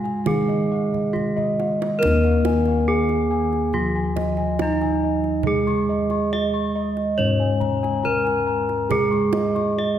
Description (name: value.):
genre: Javanese gamelan.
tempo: 70 BPM.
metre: 4/4.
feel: straight.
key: unclear.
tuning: A4 = 441 Hz.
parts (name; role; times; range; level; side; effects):
gamelan-type bronze metallophone; melody; 0.0-10.0 s; Eb4 to Eb5; -23 LUFS; right 1 dB; none.
gamelan-type bronze metallophone; accompaniment; 0.0-10.0 s; F3+40c to Db4-40c; -25 LUFS; right 1 dB; none.
gamelan-type bossed gongs; arpeggios; 0.0-10.0 s; Eb5 to Db6-40c; -27 LUFS; left 2 dB; slapback echo.
gamelan-type bossed gongs; bass; 0.0-10.0 s; Eb2 to Bb4+20c; -26 LUFS; left 1 dB; none.
kendang; percussion; 0.1-9.7 s; none; -32 LUFS; right 5 dB; none.
room: wet concert hall reverb, RT60 2.2 s.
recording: heard from further back in the room.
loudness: -19 LUFS.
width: side -10 dB against mid.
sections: 0.0-2.0 A section; 2.0-10.0 B section.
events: drum fill 0.9-2.0.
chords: none.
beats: 0.26 1.14 | 2.01 2.87 3.74 4.60 | 5.46 6.32 7.18 8.04 | 8.91 9.78.